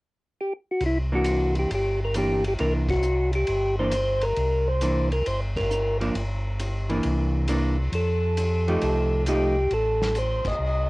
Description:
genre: soul jazz organ trio.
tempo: 135 BPM.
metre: 4/4.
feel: swing 68% on 8ths.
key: C mixolydian.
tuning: A4 = 439 Hz.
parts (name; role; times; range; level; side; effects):
percussive tonewheel organ; melody; 0.4-10.9 s; E4 to Eb5; -25 LUFS; equal; slow rotary speaker.
mellow tonewheel organ; bass; 0.8-10.9 s; G1 to F2; -26 LUFS; equal; slow rotary speaker.
warm soul drum kit; drums; 0.8-10.5 s; hi-hat, kick drum, ride cymbal, snare drum; -34 LUFS; left 1 dB; cassette tape.
vintage hollow-body jazz guitar; accompaniment; 1.1-9.5 s; E3 to G4; -26 LUFS; right 1 dB; cassette tape.
room: moderate booth ambience, RT60 0.2 s.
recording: home recording on cassette.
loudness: -22 LUFS.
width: side -21 dB against mid.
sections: 0.8-10.9 A section.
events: band accent 2.8, 5.5, 10.4.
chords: 0.0 N.C.; 0.8 C9; 6.2 Gm; 7.0 C9; 7.9 F9.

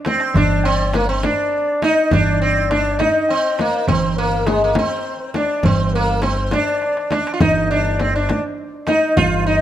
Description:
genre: Arabic maqam ensemble.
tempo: 68 BPM (dotted quarters).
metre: 6/8.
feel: straight.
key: G maqam kurd.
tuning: A4 = 440 Hz.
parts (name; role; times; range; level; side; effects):
darbuka; percussion; 0.0-9.3 s; none; -23 LUFS; right 5 dB; none.
sitar; melody; 0.1-9.6 s; Ab3 to F4; -18 LUFS; right 2 dB; none.
breathy bright low ney; second line; 0.1-9.6 s; Ab4 to F5; -23 LUFS; left 4 dB; none.
frame drum; percussion; 0.1-9.3 s; none; -23 LUFS; left 2 dB; none.
upright bass; bass; 0.4-9.6 s; G1; -21 LUFS; equal; none.
room: light reverb.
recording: close, detailed microphones.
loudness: -15 LUFS.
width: side -11 dB against mid.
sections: 0.4-9.6 A section.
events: drum fill 0.0-0.4, 6.8-7.4.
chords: none.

